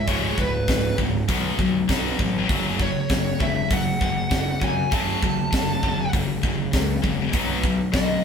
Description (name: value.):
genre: heavy metal.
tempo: 99 BPM.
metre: 4/4.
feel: straight.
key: unclear.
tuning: A4 = 442 Hz.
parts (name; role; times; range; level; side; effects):
high-gain lead guitar; melody; 0.0-8.2 s; B4 to A5; -27 LUFS; equal; distortion.
heavy high-gain guitar; riff; 0.0-8.2 s; C#2 to B3; -26 LUFS; left 7 dB; distortion.
scooped high-gain guitar; riff; 0.0-8.2 s; C#2 to B3; -28 LUFS; right 2 dB; distortion.
fuzz picked electric bass; bass; 0.1-8.2 s; C#1 to F#2; -28 LUFS; right 1 dB; overdrive.
tight metal drum kit; drums; 0.1-8.1 s; hi-hat, kick drum, snare drum; -25 LUFS; equal; none.
room: moderate stone room reverb, RT60 1.1 s.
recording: band playing live in one room.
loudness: -20 LUFS.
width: side -7 dB against mid.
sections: 0.0-8.2 A section.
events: none.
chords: 0.0 C#5; 1.3 B5; 2.5 F#m; 7.3 B.